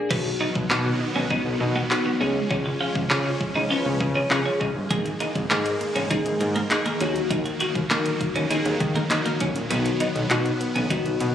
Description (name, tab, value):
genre	dance-pop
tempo	100 BPM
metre	4/4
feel	straight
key	unclear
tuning	A4 = 439 Hz
part	glassy digital keys	accompaniment	0.0-11.3 s	Bb3 to Cb5	-27 LUFS	left 2 dB	chorus
part	supersaw chords	sustained chords	0.1-11.3 s	D#3 to Db4	-31 LUFS	right 1 dB	phaser, sidechain pumping
part	wide unison pluck	arpeggios	0.1-11.3 s	Eb3 to F#5	-35 LUFS	equal	none
part	twelve-string electric guitar	riff	0.1-11.2 s	Ab3 to Gb4	-28 LUFS	right 2 dB	lush chorus
part	fat analog bass	bass	0.1-11.3 s	G1 to Eb3	-26 LUFS	equal	sidechain pumping
part	pop drum kit	drums	0.1-11.3 s	crash cymbal, handclaps, hi-hat, kick drum	-27 LUFS	equal	overdrive
room	moderate lush hall reverb, RT60 2.1 s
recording	recorded on a phone in the room, club reverb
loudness	-21 LUFS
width	side -10 dB against mid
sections	0.1-11.3 A section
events	kick muted 9.7-10.3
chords	0.1 B; 2.2 Db; 4.9 Absus2; 7.0 Ebm; 9.7 B